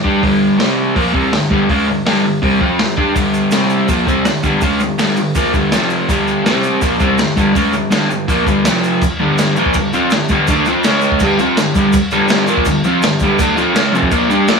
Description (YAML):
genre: garage rock duo or trio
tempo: 164 BPM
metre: 4/4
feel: straight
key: unclear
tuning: A4 = 445 Hz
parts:
  - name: raw garage guitar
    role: riff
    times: 0.0-14.6 s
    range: F2 to G4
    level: -13 LUFS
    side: equal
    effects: overdrive
  - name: crunchy breakbeat drum kit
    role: drums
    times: 0.1-14.6 s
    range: crash cymbal, hi-hat, kick drum, snare drum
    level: -18 LUFS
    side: equal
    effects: none
  - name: tube shaker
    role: percussion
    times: 3.2-14.6 s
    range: none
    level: -34 LUFS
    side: right 8 dB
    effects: none
room: moderate studio reverb, RT60 0.6 s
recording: small room ambience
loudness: -12 LUFS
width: side -5 dB against mid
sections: 0.0-9.0 A section; 9.0-14.6 B section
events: none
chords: 0.0 G5; 0.6 C5; 1.0 G5; 3.5 C5; 3.9 G5; 5.7 F5; 6.1 G5; 6.5 C5; 6.8 G5; 8.7 F5; 9.0 G5; 10.8 C#5; 11.2 G5